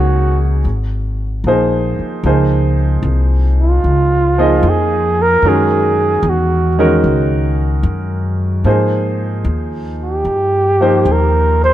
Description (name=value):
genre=jazz ballad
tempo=75 BPM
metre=4/4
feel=swing 68% on 8ths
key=unclear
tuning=A4 = 441 Hz
part: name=mellow flugelhorn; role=melody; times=0.0-11.7 s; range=F4 to C5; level=-15 LUFS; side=right 2 dB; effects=none
part: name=warm concert grand piano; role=accompaniment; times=0.0-11.7 s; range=Eb3 to Eb5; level=-17 LUFS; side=right 1 dB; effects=none
part: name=upright bass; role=bass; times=0.0-11.7 s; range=Ab1 to Ab2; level=-15 LUFS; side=equal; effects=none
room=light reverb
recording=none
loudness=-12 LUFS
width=side -13 dB against mid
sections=0.0-11.7 A section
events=flugelhorn solo 0.0-11.7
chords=0.0 Ebm7; 0.6 Ab69; 2.2 Db6; 5.4 Gb9; 8.7 Abmaj9